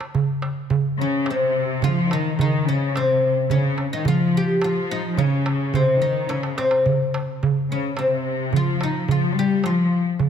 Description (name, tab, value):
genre	Arabic maqam ensemble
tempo	108 BPM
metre	3/4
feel	straight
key	C maqam kurd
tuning	A4 = 441 Hz
part	darbuka	percussion	0.0-10.3 s	none	-23 LUFS	right 4 dB	none
part	oud	melody	1.0-10.0 s	C4 to G4	-24 LUFS	left 2 dB	none
part	warm studio cello section	second line	1.0-10.1 s	C3 to G3	-22 LUFS	left 3 dB	none
room	moderate concert hall reverb, RT60 2.1 s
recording	close, detailed microphones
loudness	-19 LUFS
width	side -8 dB against mid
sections	0.2-10.3 A section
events	drum fill 0.0, 6.3-6.9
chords	none